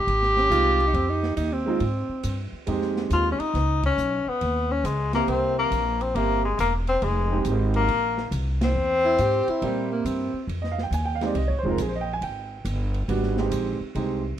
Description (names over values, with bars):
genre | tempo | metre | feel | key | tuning
jazz, small-group swing and bop | 138 BPM | 4/4 | swing 67% on 8ths | F minor | A4 = 441 Hz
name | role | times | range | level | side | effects
warm tenor saxophone | melody | 0.0-10.0 s | Ab3 to G4 | -23 LUFS | left 2 dB | none
upright bass | bass | 0.0-14.4 s | E1 to Bb2 | -26 LUFS | equal | none
open jazz drum kit | drums | 0.1-14.1 s | hi-hat, kick drum, ride cymbal, snare drum | -37 LUFS | right 2 dB | none
clear alto saxophone | second line | 0.4-2.4, 9.1-10.5 s | G3 to G4 | -28 LUFS | right 4 dB | none
warm upright piano | accompaniment | 0.5-14.2 s | G3 to Ab5 | -28 LUFS | right 4 dB | none
room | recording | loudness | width
light reverb | none | -22 LUFS | side -10 dB against mid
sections
0.0-10.5 A section; 10.5-14.4 B section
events
band accent 3.8, 8.5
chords
0.0 Fm7; 3.5 Badd9; 5.3 C7; 7.0 Fm7; 8.8 C7; 10.5 Fm7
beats
| 0.07 0.51 0.94 1.38 | 1.81 2.25 2.68 3.11 | 3.55 3.98 4.42 4.85 | 5.28 5.72 6.15 6.59 | 7.02 7.45 7.89 8.32 | 8.75 9.19 9.62 10.05 | 10.49 10.92 11.35 11.79 | 12.22 12.65 13.09 13.52 | 13.95